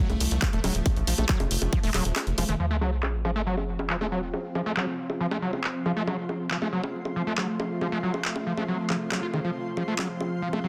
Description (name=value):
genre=psychedelic trance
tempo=138 BPM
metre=4/4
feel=straight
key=F major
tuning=A4 = 440 Hz
part: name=evolving wavetable pad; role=sustained chords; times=0.0-10.7 s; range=F3 to C4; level=-37 LUFS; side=equal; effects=phaser, built-in reverb, sidechain pumping
part: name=screaming distorted acid line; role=riff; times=0.0-10.7 s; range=Eb3 to F4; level=-33 LUFS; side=equal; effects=distortion, chorus, sidechain pumping, tape echo
part: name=tight sequencer bass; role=bass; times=0.1-2.6 s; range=Eb1 to C2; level=-29 LUFS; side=equal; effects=none
part: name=techno drum kit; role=drums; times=0.1-10.6 s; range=bongos, handclaps, hi-hat, toms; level=-33 LUFS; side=equal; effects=overdrive, low-pass filter on hats, studio ambience, low-pass filter on perc, low-pass filter on snare, low-pass filter on toms
part: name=electronic kick drum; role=drums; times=0.4-1.8 s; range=none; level=-28 LUFS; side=equal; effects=studio ambience
part: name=sub drop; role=sound effects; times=2.6-4.3 s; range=none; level=-32 LUFS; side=equal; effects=none
part: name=granular cloud pad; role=texture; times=4.3-10.7 s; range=C4 to C6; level=-39 LUFS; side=equal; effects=built-in reverb, sidechain pumping
room=light reverb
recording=dense, heavily limited modern master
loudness=-28 LUFS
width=mono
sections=0.0-2.6 A section; 2.6-10.7 B section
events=drop 0.0-2.6; kick drops out 2.2-2.6; drum fill 2.4; impact 2.6-4.3; filter sweep on drum 2.6-10.7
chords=0.0 F5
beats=0.42 | 0.86 1.29 1.73 2.16 | 2.60 3.03 3.46 3.90 | 4.33 4.77 5.21 5.64 | 6.07 6.51 6.94 7.38 | 7.81 8.25 8.68 9.12 | 9.55 9.99 10.42